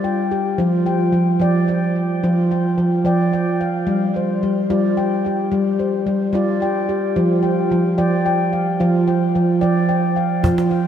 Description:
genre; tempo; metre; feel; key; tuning
world meditative, meditative tuned percussion; 73 BPM (dotted quarters); 6/8; straight; unclear; A4 = 440 Hz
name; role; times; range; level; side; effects
handpan; arpeggios; 0.0-10.9 s; F3 to G5; -16 LUFS; equal; tape echo, shimmer reverb
cajon; percussion; 10.4-10.7 s; none; -22 LUFS; right 2 dB; none
room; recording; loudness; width
wet lush hall reverb, RT60 2.7 s; dreamy mix soaked in reverb; -16 LUFS; side -9 dB against mid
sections
0.0-10.4 A section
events
none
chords
0.0 G5; 0.6 Dmadd11/F; 3.9 G5; 7.2 Dmadd11/F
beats
| 0.59 1.41 | 2.23 3.06 | 3.88 4.70 | 5.52 6.34 | 7.16 7.98 | 8.80 9.62 | 10.44

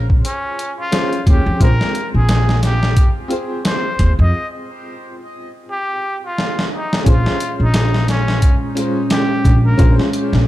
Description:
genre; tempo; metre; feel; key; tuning
trip hop; 88 BPM; 4/4; swing 58% on 16ths; Bb dorian; A4 = 440 Hz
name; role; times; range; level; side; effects
clear upright piano; accompaniment; 0.0-10.5 s; Ab3 to C5; -24 LUFS; left 1 dB; tremolo
upright bass; bass; 0.0-10.5 s; Bb1 to F2; -14 LUFS; equal; none
boom bap sampler-style drum kit; drums; 0.1-10.5 s; hi-hat, kick drum, snare drum; -16 LUFS; equal; none
trumpet with straight mute; melody; 0.3-10.0 s; Db4 to Eb5; -23 LUFS; left 1 dB; vintage 12-bit sampler grit, tape echo
warbly tape-like pad; sustained chords; 7.5-10.5 s; Bb2 to Db4; -22 LUFS; equal; chorus, built-in reverb
room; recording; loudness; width
studio reverb; dark, warm production; -14 LUFS; side -15 dB against mid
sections
0.0-7.1 A section; 7.1-10.5 B section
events
break 4.3-7.1; drum fill 6.4-7.1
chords
0.0 Bbm7; 1.6 Fm/Bb; 7.1 Bbm7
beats
0.24 0.92 | 1.60 2.29 2.97 3.65 | 4.33 5.01 5.70 6.38 | 7.06 7.74 8.42 9.11 | 9.79 10.47

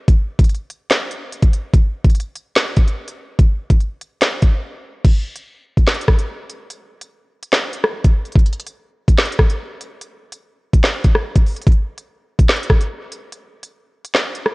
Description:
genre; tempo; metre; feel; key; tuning
hip hop; 145 BPM; 4/4; half-time; none; none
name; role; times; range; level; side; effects
drill drum kit; drums; 0.1-14.5 s; crash cymbal, handclaps, hi-hat, kick drum, rim click, snare drum; -14 LUFS; equal; vintage 12-bit sampler grit
room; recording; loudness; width
little or no reverb; worn, warbling old tape, cassette tape, warbly pitch drift; -15 LUFS; side -26 dB against mid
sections
0.0-5.0 A section; 5.0-14.5 B section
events
break 4.6-5.0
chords
none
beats
| 0.08 0.49 0.91 1.32 | 1.74 2.15 2.56 2.98 | 3.39 3.80 4.22 4.63 | 5.04 5.46 5.87 6.29 | 6.70 7.11 7.53 7.94 | 8.36 8.77 9.18 9.60 | 10.01 10.42 10.84 11.25 | 11.67 12.08 12.49 12.91 | 13.32 13.73 14.15

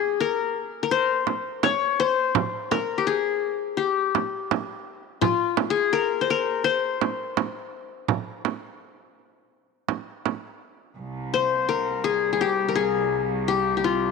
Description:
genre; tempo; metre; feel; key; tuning
Arabic maqam ensemble; 84 BPM; 4/4; straight; C maqam hijaz; A4 = 437 Hz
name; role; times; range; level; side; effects
qanun; melody; 0.0-14.1 s; F4 to Db5+25c; -22 LUFS; left 8 dB; none
frame drum; percussion; 1.3-10.4 s; none; -26 LUFS; right 12 dB; none
clear studio cello section; drone; 11.0-14.1 s; C2; -30 LUFS; right 4 dB; none
room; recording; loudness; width
moderate plate reverb, RT60 2.5 s; 1960s-style stereo with parts hard left and right; -22 LUFS; side -4 dB against mid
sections
0.0-11.0 A section; 11.0-14.1 B section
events
none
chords
none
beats
0.19 0.91 1.63 | 2.35 3.06 3.78 4.50 | 5.22 5.93 6.65 7.37 | 8.09 8.81 9.52 10.24 | 10.96 11.68 12.40 13.12 | 13.84

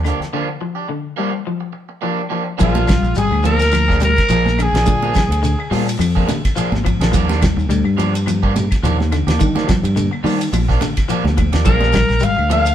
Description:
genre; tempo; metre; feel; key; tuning
afrobeat; 106 BPM; 4/4; swing 55% on 16ths; Bb mixolydian; A4 = 440 Hz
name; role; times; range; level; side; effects
fingered electric bass; bass; 0.0-12.7 s; Ab1 to Eb3; -18 LUFS; equal; none
claves; percussion; 0.0-12.5 s; none; -35 LUFS; left 3 dB; none
shekere; percussion; 0.0-12.7 s; none; -29 LUFS; left 2 dB; none
electric guitar at the edge of break-up; arpeggios; 0.1-12.7 s; D3 to G3; -22 LUFS; left 6 dB; spring reverb
electric guitar at the edge of break-up; stabs; 0.1-12.7 s; F3 to Ab4; -24 LUFS; right 6 dB; none
damped 70s drum kit; drums; 0.1-12.7 s; hi-hat, kick drum, ride cymbal, snare drum; -21 LUFS; equal; none
raspy alto saxophone; melody; 2.6-5.7, 11.7-12.7 s; F4 to F5; -19 LUFS; left 2 dB; none
growling trumpet; second line; 2.6-5.7, 11.7-12.7 s; F4 to F5; -24 LUFS; right 3 dB; none
congas; percussion; 2.6-12.7 s; none; -24 LUFS; right 3 dB; none
room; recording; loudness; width
moderate studio reverb, RT60 0.8 s; band playing live in one room; -14 LUFS; side -10 dB against mid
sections
0.0-2.6 A section; 2.6-12.7 B section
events
break 0.3-2.6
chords
0.0 Ebmaj9 (rootless); 2.6 Bb7; 7.1 Ebmaj9; 11.7 Bb7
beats
| 0.33 0.90 1.47 2.04 | 2.60 3.17 3.74 4.30 | 4.87 5.43 6.00 6.57 | 7.13 7.70 8.26 8.83 | 9.40 9.96 10.53 11.09 | 11.66 12.22

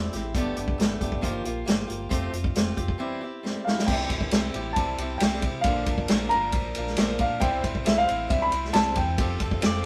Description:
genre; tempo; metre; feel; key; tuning
folk rock and heartland rock; 136 BPM; 4/4; straight; unclear; A4 = 440 Hz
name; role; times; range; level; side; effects
picked swing-style acoustic guitar; accompaniment; 0.0-9.8 s; G2 to C5; -34 LUFS; equal; none
fingered electric bass; bass; 0.0-9.8 s; F1 to C3; -36 LUFS; equal; none
vintage drum kit; drums; 0.1-9.7 s; crash cymbal, hi-hat, kick drum, ride cymbal, snare drum; -28 LUFS; equal; none
warm grand piano; melody; 3.6-9.9 s; E5 to B5; -29 LUFS; equal; none
mellow tonewheel organ; sustained chords; 3.9-9.9 s; E3 to D5; -45 LUFS; equal; none
pedal steel guitar; second line; 9.7-9.9 s; D5; -33 LUFS; equal; none
room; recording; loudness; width
light reverb; rough rehearsal-room recording; -26 LUFS; mono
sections
0.0-3.9 A section; 3.9-9.9 B section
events
drum fill 3.4-3.9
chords
0.3 Gadd9; 1.2 Ebadd9/G; 2.1 Fadd9; 3.0 C/E; 3.9 C; 5.7 Bb; 7.4 C; 9.2 Fadd9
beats
| 0.35 0.79 1.24 1.68 | 2.12 2.56 3.00 3.45 | 3.89 4.33 4.77 5.21 | 5.66 6.10 6.54 6.98 | 7.43 7.87 8.31 8.75 | 9.20 9.64

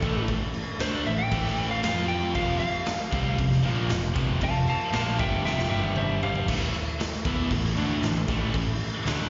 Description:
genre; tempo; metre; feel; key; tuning
hard rock; 116 BPM; 4/4; straight; A phrygian; A4 = 440 Hz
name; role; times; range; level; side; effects
lightly driven lead guitar; melody; 0.0-6.5 s; A4 to A5; -32 LUFS; equal; slapback echo
overdriven tonewheel organ; sustained chords; 0.0-9.3 s; F3 to A4; -44 LUFS; equal; none
crunchy overdriven guitar; riff; 0.0-9.3 s; F2 to F4; -38 LUFS; equal; slapback echo
scooped high-gain guitar; riff; 0.0-9.3 s; F2 to F4; -35 LUFS; equal; distortion, slapback echo
sludgy distorted guitar; riff; 0.0-9.3 s; F2 to F4; -34 LUFS; equal; overdrive, slapback echo
modern bright picked electric bass; bass; 0.0-9.3 s; F1 to F2; -32 LUFS; equal; none
raw garage drum kit; drums; 0.0-9.3 s; crash cymbal, kick drum, snare drum, toms; -32 LUFS; equal; none
room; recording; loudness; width
light reverb; live gig heard through the venue's PA, recital hall reverb, nothing above 7.5 kHz; -26 LUFS; mono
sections
0.0-6.5 A section; 6.5-9.3 B section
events
lead electric guitar solo 0.0-6.5; drum fill 5.5-6.5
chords
0.0 A5; 1.8 F5; 5.7 G5; 6.2 F5; 6.5 A5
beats
| 0.29 0.81 1.32 1.84 | 2.36 2.88 3.39 3.91 | 4.42 4.94 5.46 5.97 | 6.49 7.00 7.52 8.04 | 8.55 9.07

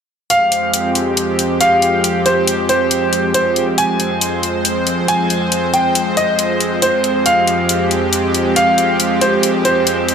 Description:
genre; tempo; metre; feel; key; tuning
heavy wobble dubstep; 138 BPM; 4/4; swing 54% on 16ths, half-time; F minor; A4 = 440 Hz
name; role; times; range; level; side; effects
bright baby grand piano; melody; 0.3-10.1 s; C5 to Ab5; -16 LUFS; equal; tape echo
supersaw pad; sustained chords; 0.3-10.1 s; F2 to C5; -16 LUFS; equal; none
electronic hi-hat; drums; 0.3-10.1 s; none; -18 LUFS; left 3 dB; studio reverb
room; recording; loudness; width
moderate digital room reverb, RT60 1.1 s, small room ambience; none; -13 LUFS; side -7 dB against mid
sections
0.3-10.1 A section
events
none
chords
0.3 Fmadd9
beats
| 0.30 0.74 1.17 1.60 | 2.04 2.48 2.91 3.34 | 3.78 4.21 4.65 5.08 | 5.52 5.95 6.39 6.82 | 7.26 7.69 8.13 8.56 | 9.00 9.43 9.87

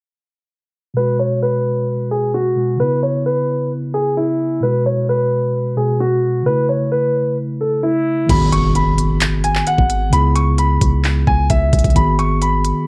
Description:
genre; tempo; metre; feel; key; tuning
hip hop, trap; 131 BPM; 4/4; half-time; G# phrygian; A4 = 438 Hz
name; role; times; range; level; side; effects
mellow tine electric piano; accompaniment; 0.9-12.9 s; B2 to G#4; -22 LUFS; equal; none
dark concert grand piano; melody; 1.0-12.9 s; E4 to C#6; -20 LUFS; equal; none
long sustained 808-style bass; bass; 8.3-12.7 s; G#1 to C#2; -20 LUFS; equal; none
trap drum kit; drums; 8.3-12.8 s; crash cymbal, handclaps, hi-hat, kick drum; -20 LUFS; equal; none
impact; sound effects; 8.3-10.1 s; none; -27 LUFS; equal; none
room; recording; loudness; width
light reverb, digital ambience; worn, warbling old tape, cassette tape, warbly pitch drift, low-pass filter; -17 LUFS; mono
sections
1.0-8.3 A section; 8.3-12.9 B section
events
filter sweep 1.0-8.3; impact 8.3-10.1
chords
1.0 G#m7; 2.8 C#m7; 4.6 G#m7; 6.5 A; 8.3 G#m7; 10.1 C#m7; 12.0 G#m7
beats
| 0.96 1.42 1.88 2.34 | 2.80 3.25 3.71 4.17 | 4.63 5.09 5.54 6.00 | 6.46 6.92 7.38 7.83 | 8.29 8.75 9.21 9.67 | 10.13 10.58 11.04 11.50 | 11.96 12.42

